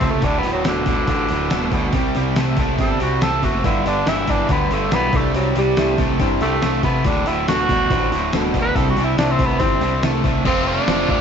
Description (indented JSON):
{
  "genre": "classic rock",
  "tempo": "141 BPM",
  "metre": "4/4",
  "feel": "straight",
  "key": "unclear",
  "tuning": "A4 = 439 Hz",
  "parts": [
    { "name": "breathy tenor saxophone", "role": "melody", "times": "0.0-11.2 s", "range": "D3 to B4", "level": "-21 LUFS", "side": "right 1 dB", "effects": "none" },
    { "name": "overdriven electric guitar", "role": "riff", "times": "0.0-11.2 s", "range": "D2 to F4", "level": "-21 LUFS", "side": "right 1 dB", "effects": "none" },
    { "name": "growling picked electric bass", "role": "bass", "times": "0.0-11.2 s", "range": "D1 to C3", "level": "-24 LUFS", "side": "equal", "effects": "overdrive" },
    { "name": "lo-fi sampler-style drum kit", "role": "drums", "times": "0.0-11.2 s", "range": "crash cymbal, hi-hat, kick drum, snare drum", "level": "-23 LUFS", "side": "equal", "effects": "none" },
    { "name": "warm grand piano", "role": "accompaniment", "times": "3.6-10.4 s", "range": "D4 to D5", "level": "-28 LUFS", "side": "left 4 dB", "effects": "none" },
    { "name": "distorted electric guitar", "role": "riff", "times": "10.4-11.2 s", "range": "F2 to F4", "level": "-24 LUFS", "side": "equal", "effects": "overdrive" }
  ],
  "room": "moderate studio reverb, RT60 0.8 s",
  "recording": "band playing live in one room, nothing above 7.8 kHz",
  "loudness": "-16 LUFS",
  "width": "side -7 dB against mid",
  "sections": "0.0-10.5 A section",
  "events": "tenor saxophone solo 0.0-10.5",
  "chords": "0.2 D5; 1.9 C5; 3.6 G; 5.1 Cadd9; 7.1 D; 8.8 Cadd9; 10.5 F"
}